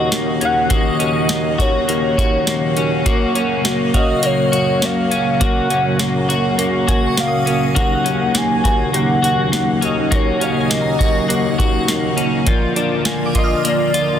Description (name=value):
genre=dream pop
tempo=102 BPM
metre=4/4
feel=straight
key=Eb minor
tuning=A4 = 440 Hz
part: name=warm velvety synth lead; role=melody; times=0.0-14.2 s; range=Db5 to Ab5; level=-21 LUFS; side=equal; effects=chorus, digital delay
part: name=string machine, cellos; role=sustained chords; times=0.0-14.2 s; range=Db3 to Gb4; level=-20 LUFS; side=right 1 dB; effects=ensemble chorus
part: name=clean electric guitar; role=arpeggios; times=0.0-14.2 s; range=F3 to Gb4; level=-21 LUFS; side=left 3 dB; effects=analog chorus, digital delay
part: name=dark bassoon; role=bass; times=0.0-14.2 s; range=Eb2 to Bb2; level=-24 LUFS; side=equal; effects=none
part: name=booming analog drum machine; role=drums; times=0.1-14.1 s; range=hi-hat, kick drum, snare drum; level=-20 LUFS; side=equal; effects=none
part: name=shimmering bell with halo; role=texture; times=0.7-14.1 s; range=F5 to F6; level=-32 LUFS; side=right 2 dB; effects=ensemble chorus, tremolo, digital delay
room=light reverb, digital ambience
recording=dense, heavily limited modern master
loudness=-14 LUFS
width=side -9 dB against mid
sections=0.0-14.2 A section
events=none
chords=0.0 Ebm7; 3.1 Gb; 7.8 Ebm7; 12.5 Bb